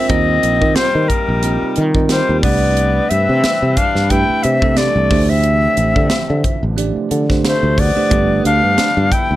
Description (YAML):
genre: electric jazz fusion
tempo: 90 BPM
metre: 4/4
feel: swing 55% on 16ths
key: unclear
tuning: A4 = 440 Hz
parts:
  - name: silver concert flute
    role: melody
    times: 0.0-9.4 s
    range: Bb4 to G5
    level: -17 LUFS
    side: left 2 dB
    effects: none
  - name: clear tenor saxophone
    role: second line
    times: 0.0-9.4 s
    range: G3 to E4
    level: -25 LUFS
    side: left 4 dB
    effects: none
  - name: bell-like tine electric piano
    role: accompaniment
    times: 0.0-9.0 s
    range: A3 to Eb5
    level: -20 LUFS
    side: right 6 dB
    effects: none
  - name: warm analog pad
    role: sustained chords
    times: 0.0-9.4 s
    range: C3 to B4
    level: -27 LUFS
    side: equal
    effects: chorus, tremolo
  - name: sustaining fretless electric bass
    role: bass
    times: 0.1-9.4 s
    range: G1 to Eb3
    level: -17 LUFS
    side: equal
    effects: none
  - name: crisp fusion drum kit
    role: drums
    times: 0.1-9.3 s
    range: hi-hat, kick drum, snare drum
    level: -19 LUFS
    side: equal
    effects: none
room: little or no reverb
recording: none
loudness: -12 LUFS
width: side -15 dB against mid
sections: 0.0-9.4 A section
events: none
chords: 0.1 Eb6; 2.4 Cmaj7; 5.1 Dm9; 8.1 G7